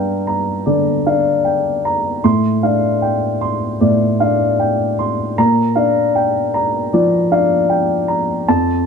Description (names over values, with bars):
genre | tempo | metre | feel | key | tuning
neoclassical minimalist piano | 77 BPM | 4/4 | rubato | unclear | A4 = 440 Hz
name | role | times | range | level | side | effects
dark upright piano | solo | 0.0-8.9 s | F2 to C6 | -14 LUFS | left 1 dB | none
room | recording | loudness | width
light reverb | dark, warm production | -14 LUFS | side -6 dB against mid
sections
0.0-8.9 A section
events
none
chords
0.0 Gm7; 2.2 F6/A; 5.4 Bb